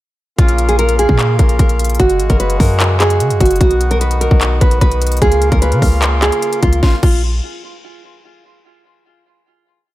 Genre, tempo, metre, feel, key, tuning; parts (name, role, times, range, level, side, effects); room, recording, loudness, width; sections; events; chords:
hip hop, trap; 149 BPM; 4/4; half-time; Bb phrygian; A4 = 439 Hz
nylon-string guitar; melody; 0.4-7.2 s; F4 to Cb5; -17 LUFS; right 1 dB; low-pass filter, ping-pong delay
hand-pumped harmonium; sustained chords; 0.4-7.0 s; Db3 to Gb4; -22 LUFS; equal
clean 808-style bass; bass; 0.4-7.4 s; Gb1 to Db3; -14 LUFS; equal
trap drum kit; drums; 0.4-7.1 s; crash cymbal, handclaps, hi-hat, kick drum, snare drum; -15 LUFS; equal
digital ambience; -11 LUFS; side -16 dB against mid
0.4-6.8 hook; 6.8-8.4 final chord
0.4 Bbm; 2.0 Gbsus2; 3.6 B; 5.2 Db6; 6.8 Bbm